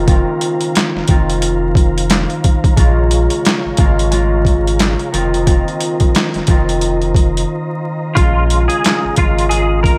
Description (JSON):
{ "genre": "hip hop, boom-bap hip-hop", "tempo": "89 BPM", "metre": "4/4", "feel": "swing 60% on 16ths", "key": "Bb minor", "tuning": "A4 = 440 Hz", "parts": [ { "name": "concert harp", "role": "accompaniment", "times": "0.0-10.0 s", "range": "Db3 to F4", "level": "-20 LUFS", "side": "equal", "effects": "high-pass filter, low-pass filter" }, { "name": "mellow tonewheel organ", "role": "sustained chords", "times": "0.0-10.0 s", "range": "Db4 to Bb5", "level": "-28 LUFS", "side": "equal", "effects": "chorus vibrato, lush chorus, high-pass filter, low-pass filter" }, { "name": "sub bass with octave", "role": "bass", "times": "0.0-10.0 s", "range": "F1 to Bb1", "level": "-20 LUFS", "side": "equal", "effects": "none" }, { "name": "boom bap sampler-style drum kit", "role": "drums", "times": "0.1-10.0 s", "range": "handclaps, hi-hat, kick drum, snare drum", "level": "-16 LUFS", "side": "equal", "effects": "overdrive" }, { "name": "semi-hollow electric guitar", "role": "melody", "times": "8.2-10.0 s", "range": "F4 to Bb4", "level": "-20 LUFS", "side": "equal", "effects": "ensemble chorus, high-pass filter, low-pass filter" } ], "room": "digital ambience", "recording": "vinyl crackle", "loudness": "-14 LUFS", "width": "mono", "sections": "0.0-10.0 A section", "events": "break 0.0-2.8, 7.5-8.2", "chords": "0.0 F7sus4; 2.8 Bbm7; 5.1 F7sus4; 8.2 Bbm7" }